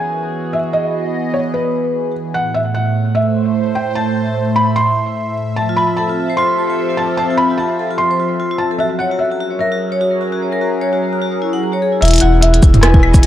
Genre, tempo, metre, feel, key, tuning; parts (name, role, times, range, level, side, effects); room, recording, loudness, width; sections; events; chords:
IDM; 149 BPM; 4/4; swing 56% on 16ths; A4 = 440 Hz
felt-muted upright piano; melody; 0.0-13.3 s; B4 to C6; -18 LUFS; equal; tape echo
phased analog pad; sustained chords; 0.0-13.3 s; A2 to E5; -19 LUFS; right 2 dB; phaser, chorus
vibraphone with hard mallets; arpeggios; 5.7-13.3 s; E4 to F#5; -19 LUFS; left 3 dB; tape echo
warm sub bass; bass; 12.0-13.2 s; E1; -12 LUFS; equal; tube saturation
glitchy drum kit; drums; 12.0-13.3 s; claves, hi-hat, rim click, shaker, toms; -15 LUFS; equal; low-pass filter on hats, low-pass filter on perc, low-pass filter on toms, low-pass filter on snare, low-pass filter on room
bubbling stepped-filter texture; texture; 12.0-13.3 s; E4; -22 LUFS; right 2 dB; chorus, built-in reverb, sidechain pumping
electronic kick drum; drums; 12.6-13.2 s; -8 LUFS; equal
wet spring reverb, RT60 1.1 s, digital ambience; echo-heavy mix; -13 LUFS; side -12 dB against mid
0.0-12.0 A section; 12.0-13.3 B section
0.0 Emaj7; 2.4 Am; 5.6 Fmaj7; 8.8 F#7; 12.0 Emaj7